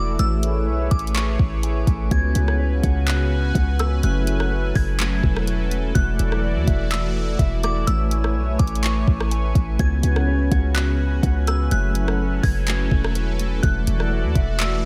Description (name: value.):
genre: hip hop, atmospheric cloud-rap.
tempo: 125 BPM.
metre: 4/4.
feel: half-time.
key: F# minor.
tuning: A4 = 439 Hz.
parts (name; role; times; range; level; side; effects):
glassy synth bell; melody; 0.0-14.9 s; C#6 to G#6; -32 LUFS; equal; chorus, phaser, low-pass filter, delay.
sweeping resonant pad; sustained chords; 0.0-14.9 s; C#3 to G#5; -29 LUFS; equal; chorus, sidechain pumping.
mellow electric guitar; arpeggios; 0.0-14.9 s; A3 to G#5; -34 LUFS; equal; harmonic tremolo, low-pass filter, delay.
warm 808-style bass; bass; 0.0-14.9 s; E1 to E2; -23 LUFS; equal; none.
smooth R&B drum kit; drums; 0.2-14.7 s; handclaps, hi-hat, kick drum, rim click; -25 LUFS; equal; none.
room: digital ambience.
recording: none.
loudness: -21 LUFS.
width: mono.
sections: 0.0-2.1 A section; 2.1-14.9 B section.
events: none.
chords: 0.2 Amaj7; 2.1 C#7sus4; 4.0 F#m11; 6.0 E7sus4; 7.9 Amaj7; 9.8 C#7sus4; 11.7 F#m11; 13.6 E7sus4.